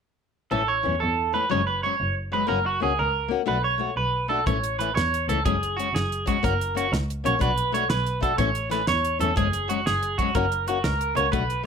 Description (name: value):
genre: highlife guitar band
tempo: 122 BPM (dotted quarters)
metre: 12/8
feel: straight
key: unclear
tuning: A4 = 440 Hz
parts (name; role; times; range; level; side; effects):
- picked steel-string acoustic guitar; accompaniment; 0.5-11.7 s; E3 to F#4; -28 LUFS; left 13 dB; plate reverb
- electric guitar at the edge of break-up; arpeggios; 0.5-11.6 s; F#4 to C#5; -24 LUFS; right 4 dB; wide subtle chorus, slapback echo, plate reverb
- warm double bass; bass; 0.5-11.7 s; F#1 to E2; -28 LUFS; equal; none
- damped 70s drum kit; drums; 4.5-11.6 s; hi-hat, kick drum, snare drum; -29 LUFS; right 1 dB; none
room: light reverb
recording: none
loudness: -22 LUFS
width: side -6 dB against mid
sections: 0.5-4.5 A section; 4.5-11.7 B section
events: none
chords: 0.5 A; 1.5 F#sus2; 2.5 F#; 3.5 Bm7; 4.5 A; 5.4 F#sus2; 6.4 F#; 7.4 Bm7; 8.4 A; 9.4 F#sus2; 10.3 F#